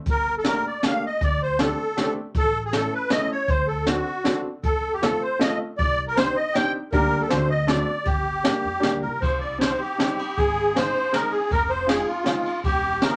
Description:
musette waltz; 157 BPM; 3/4; straight; G minor, C minor from 9.2 s; A4 = 438 Hz
musette accordion; melody; 0.1-13.2 s; F4 to G5; -26 LUFS; equal
upright bass; bass; 0.1-13.0 s; E1 to F2; -34 LUFS; equal
jazz brush drum kit; drums; 0.1-13.1 s; hi-hat, kick drum, ride cymbal, snare drum; -28 LUFS; equal
bright upright piano; accompaniment; 0.4-13.2 s; G3 to A4; -30 LUFS; equal
moderate small room ambience, RT60 0.5 s; -23 LUFS; mono
0.1-9.2 A section; 9.2-13.2 B section
0.1 Gmadd9; 1.2 D7sus4; 2.4 A; 3.5 D7; 4.6 F; 5.8 Cmadd9; 6.9 Gm/D; 7.3 D7; 8.1 Gm; 9.2 Cm; 10.4 Ab; 11.5 Fm7; 12.6 C7/E
| 0.06 0.45 0.83 | 1.21 1.59 1.97 | 2.35 2.73 3.11 | 3.49 3.88 4.26 | 4.64 5.03 5.41 | 5.79 6.17 6.55 | 6.92 7.30 7.68 | 8.06 8.45 8.83 | 9.22 9.61 9.99 | 10.38 10.76 11.13 | 11.51 11.89 12.26 | 12.64 13.02

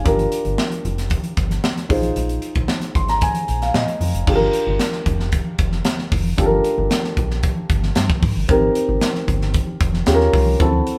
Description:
polished 1980s jazz-funk pop; 114 BPM; 4/4; straight; A4 = 441 Hz
dark concert grand piano; accompaniment; 0.0-11.0 s; C4 to C6; -23 LUFS; equal
fingered electric bass with an envelope filter; bass; 0.0-10.8 s; F1 to Bb2; -24 LUFS; equal
crisp fusion drum kit; drums; 0.1-11.0 s; crash cymbal, hi-hat, kick drum, snare drum; -23 LUFS; equal
congas; percussion; 0.1-10.9 s; -34 LUFS; equal
moderate studio reverb, RT60 0.8 s; band playing live in one room; -19 LUFS; mono
0.0-4.3 A section; 4.3-11.0 B section
grand piano fill 2.7-4.3
0.1 Bb6; 1.9 Bb7sus4; 4.3 Gm7; 8.5 Abmaj7; 10.1 Eb9
| 0.06 0.58 1.11 1.64 | 2.17 2.69 3.22 3.75 | 4.28 4.80 5.33 5.86 | 6.38 6.91 7.44 7.96 | 8.49 9.02 9.54 10.07 | 10.60

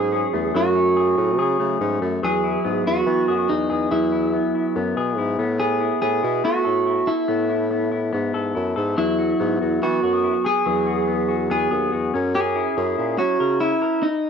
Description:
jangly indie pop; 142 BPM; 4/4; straight; E major; A4 = 436 Hz
electric guitar through a small old amp; melody; 0.0-14.3 s; D#4 to G#4; -21 LUFS; right 2 dB; spring reverb, tape echo
electric guitar with an envelope filter; arpeggios; 0.0-14.1 s; F#3 to A#4; -25 LUFS; left 7 dB
mellow bassoon; bass; 0.0-13.8 s; D#2 to A3; -24 LUFS; right 1 dB
little or no reverb; dry, close 1970s-style studio recording; -18 LUFS; side -6 dB against mid
0.0-2.2 A section; 2.2-14.3 B section
0.0 F#madd9; 2.2 Eadd9; 5.4 Asus2; 9.0 Eadd9; 12.1 F#7
0.12 | 0.54 0.96 1.38 1.80 | 2.23 2.65 3.07 3.49 | 3.91 4.33 4.76 5.18 | 5.60 6.02 6.45 6.87 | 7.29 7.71 8.13 8.55 | 8.98 9.40 9.82 10.24 | 10.66 11.08 11.51 11.93 | 12.35 12.77 13.19 13.61 | 14.03

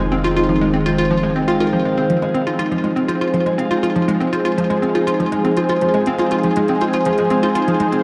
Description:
ambient, sequencer-driven space music; 121 BPM; 4/4; straight; F minor; A4 = 440 Hz
lush unison pad; sustained chords; 0.0-8.0 s; Eb3 to C5; -22 LUFS; equal; chorus, shimmer reverb
concert harp; arpeggios; 0.0-8.0 s; C4 to F5; -24 LUFS; equal; delay, shimmer reverb
hollow square pluck; riff; 0.0-8.0 s; F3 to F4; -22 LUFS; equal; lush chorus, delay, shimmer reverb
round analog bass; bass; 0.0-2.1 s; F1; -30 LUFS; equal
electronic hi-hat and percussion blips; percussion; 2.1-8.0 s; -42 LUFS; equal; overdrive, delay
wet lush hall reverb, RT60 3.0 s; dark, warm production; -17 LUFS; mono
0.0-2.1 A section; 2.1-8.0 B section
fade-in on drum 2.1-8.0
0.0 Fm7
| 0.12 0.61 1.11 1.60 | 2.10 2.60 3.09 3.59 | 4.08 4.58 5.07 5.57 | 6.07 6.56 7.06 7.55

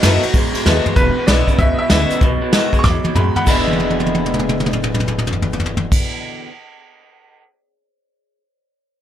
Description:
rockabilly; 192 BPM; 4/4; swing 65% on 8ths; E mixolydian; A4 = 441 Hz
picked swing-style acoustic guitar; accompaniment; 0.0-6.5 s; E2 to F#4; -22 LUFS; left 4 dB
electric guitar through a small old amp; riff; 0.0-6.5 s; E2 to G#4; -22 LUFS; right 3 dB; spring reverb
upright bass; bass; 0.0-5.9 s; E1 to A2; -21 LUFS; equal
vintage brush drum kit; drums; 0.0-7.4 s; crash cymbal, hi-hat, kick drum, ride cymbal, snare drum, toms; -17 LUFS; equal
bright upright piano; melody; 1.0-5.9 s; B4 to D6; -22 LUFS; equal
light reverb; lossy compression artefacts; -14 LUFS; side -11 dB against mid
1.0-3.5 A section; 3.5-6.0 B section
drum fill 0.7-1.0, 2.8-3.5, 3.6-5.9
0.0 B7; 1.0 E7; 2.2 B7; 3.5 E7
0.03 0.34 0.65 | 0.96 1.27 1.59 1.90 | 2.21 2.52 2.84 3.15 | 3.46 3.78 4.09 4.41 | 4.72 5.03 5.35 5.66

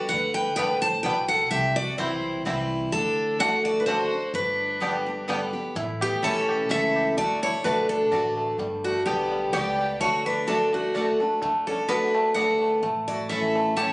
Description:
bluegrass; 127 BPM; 3/4; swing 54% on 8ths; G major; A4 = 441 Hz
picked steel-string acoustic guitar; melody; 0.0-13.9 s; F#4 to A5; -25 LUFS; equal; plate reverb
clear fiddle; second line; 0.0-13.9 s; A3 to C#5; -33 LUFS; equal; analog delay
picked steel-string acoustic guitar; accompaniment; 0.0-13.9 s; G2 to G4; -28 LUFS; equal
upright bass; bass; 0.1-13.9 s; G1 to D2; -36 LUFS; equal
bluegrass banjo; arpeggios; 0.6-13.9 s; D3 to G4; -29 LUFS; equal
mandolin; stabs; 0.6-13.9 s; A3 to A5; -34 LUFS; right 1 dB
moderate large studio reverb, RT60 0.9 s; recorded on a phone in the room, club reverb, compression, nothing above 10.5 kHz; -22 LUFS; side -24 dB against mid
0.0-5.8 A section; 5.8-13.9 B section
0.0 G; 1.5 C; 2.9 D; 4.3 G; 5.8 A; 7.2 D; 8.6 G; 10.0 D; 11.4 D6; 12.8 A
| 0.10 0.57 1.05 | 1.52 1.99 2.46 | 2.93 3.40 3.87 | 4.34 4.82 5.29 | 5.76 6.23 6.70 | 7.17 7.64 8.12 | 8.59 9.06 9.53 | 10.00 10.47 10.94 | 11.41 11.89 12.36 | 12.83 13.30 13.77

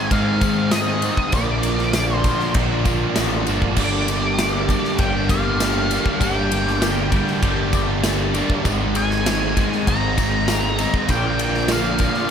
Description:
rock, shoegaze and dream pop; 98 BPM; 4/4; straight; G minor; A4 = 439 Hz
octave-fuzz lead guitar; melody; 0.0-12.3 s; D5 to Bb5; -25 LUFS; equal; distortion, tape echo
string machine, full ensemble; sustained chords; 0.0-12.3 s; F4 to Bb5; -32 LUFS; left 1 dB
biting overdriven guitar; riff; 0.0-12.3 s; G2 to Eb4; -25 LUFS; right 11 dB; reverse reverb
crunchy overdriven guitar; riff; 0.0-12.3 s; G2 to Eb4; -27 LUFS; left 11 dB; wide subtle chorus
overdriven electric guitar; riff; 0.0-12.3 s; G2 to Bb3; -26 LUFS; left 1 dB; phaser
growling picked electric bass; bass; 0.1-12.1 s; G1 to Ab2; -24 LUFS; equal; overdrive
big rock drum kit; drums; 0.1-12.2 s; crash cymbal, kick drum, ride cymbal, snare drum; -23 LUFS; equal
tambourine; percussion; 0.4-12.2 s; -36 LUFS; left 11 dB
small room ambience; -17 LUFS; side -8 dB against mid
0.0-12.3 A section
0.0 Abadd9; 1.3 Bb; 3.8 Gmadd9; 8.7 Abadd9; 11.1 Bb
0.12 0.73 | 1.34 1.95 2.56 3.17 | 3.78 4.39 5.00 5.61 | 6.22 6.83 7.44 8.05 | 8.66 9.27 9.88 10.49 | 11.10 11.71

